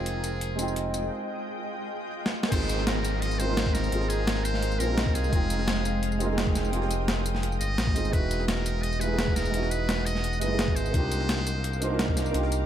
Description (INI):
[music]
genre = liquid drum and bass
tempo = 171 BPM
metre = 4/4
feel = straight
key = Ab lydian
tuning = A4 = 440 Hz
[part]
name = trumpet with metal mute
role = melody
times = 0.0-12.2 s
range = Ab4 to D#5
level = -35 LUFS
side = equal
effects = dub echo
[part]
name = felt-muted upright piano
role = accompaniment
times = 0.0-12.7 s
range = Ab3 to G5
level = -31 LUFS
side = right 2 dB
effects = digital delay
[part]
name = shimmering ambient pad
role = sustained chords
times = 0.0-12.7 s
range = Ab3 to Eb6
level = -35 LUFS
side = equal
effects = chorus, built-in reverb
[part]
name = smooth synth bass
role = bass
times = 0.0-12.7 s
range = E1 to C2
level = -29 LUFS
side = equal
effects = none
[part]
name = breakbeat sampler-style drum kit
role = drums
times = 0.1-12.6 s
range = crash cymbal, hi-hat, snare drum, tambourine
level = -30 LUFS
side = equal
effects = none
[part]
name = electronic kick drum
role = drums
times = 2.5-12.2 s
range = none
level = -27 LUFS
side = equal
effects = none
[part]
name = downlifter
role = sound effects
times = 2.5-5.3 s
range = none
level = -37 LUFS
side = equal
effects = none
[sound]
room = little or no reverb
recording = none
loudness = -24 LUFS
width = side -10 dB against mid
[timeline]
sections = 0.0-2.5 A section; 2.5-12.7 B section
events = build-up 0.0-2.5; filter sweep on ambient pad 0.0-2.5; break 1.1-2.5; drum fill 2.3; drop 2.5-12.7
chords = 0.0 Fm9; 2.5 Ab69; 5.3 Fm9; 8.1 Emaj9; 10.9 Cm11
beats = 0.06 0.41 0.76 | 1.11 1.47 1.82 2.17 | 2.52 2.87 3.22 3.57 | 3.92 4.27 4.62 4.97 | 5.33 5.68 6.03 6.38 | 6.73 7.08 7.43 7.78 | 8.13 8.48 8.84 9.19 | 9.54 9.89 10.24 10.59 | 10.94 11.29 11.64 11.99 | 12.34